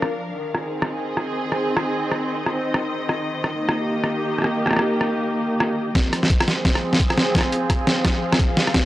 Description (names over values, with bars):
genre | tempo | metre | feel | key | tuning
half-time drum and bass | 172 BPM | 4/4 | swing 59% on 16ths, half-time | F minor | A4 = 438 Hz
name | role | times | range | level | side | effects
muted symphonic string section | sustained chords | 0.0-8.9 s | Eb3 to F5 | -23 LUFS | equal | sidechain pumping, low-pass filter
boom bap sampler-style drum kit | drums | 0.0-8.8 s | hi-hat, rim click, snare drum | -21 LUFS | equal | low-pass filter on snare, low-pass filter on hats
dark detuned saw bass | bass | 6.0-8.9 s | none | barely audible | none | none
electronic kick drum | drums | 6.0-8.8 s | none | -20 LUFS | equal | none
room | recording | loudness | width
light reverb, digital ambience | dry, gritty hardware recording, transformer saturation, cassette tape | -19 LUFS | side -15 dB against mid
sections
0.0-6.0 A section; 6.0-8.9 B section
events
build-up 6.0-8.9; drum fill 6.0-8.9; filter sweep on string section 6.0-8.9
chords
0.4 Ab; 3.2 Eb; 6.0 Fm